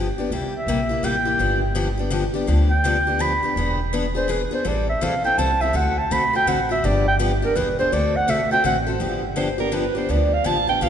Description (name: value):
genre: acoustic string swing (jazz manouche)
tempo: 166 BPM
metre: 3/4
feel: swing 63% on 8ths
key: G mixolydian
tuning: A4 = 440 Hz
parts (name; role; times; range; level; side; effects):
- picked steel-string acoustic guitar; accompaniment; 0.0-10.9 s; C3 to A4; -24 LUFS; left 3 dB; none
- upright bass; bass; 0.0-10.9 s; E1 to D2; -24 LUFS; equal; none
- breathy clarinet; melody; 0.5-8.8 s; Bb4 to B5; -22 LUFS; right 2 dB; none
- mellow soprano saxophone; second line; 9.4-10.9 s; Bb4 to A5; -22 LUFS; right 4 dB; none
room: wet church reverb, RT60 3.2 s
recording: recorded in a church or concert hall, nothing above 10.7 kHz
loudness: -18 LUFS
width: side -9 dB against mid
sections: 0.0-9.0 A section; 9.0-10.9 A section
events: clarinet solo 0.0-9.0; soprano saxophone solo 9.0-10.9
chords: 0.3 C7; 1.4 G7; 3.6 E7; 4.7 Am7; 5.7 D7; 6.8 G7; 7.6 E7; 7.9 D7; 9.0 G7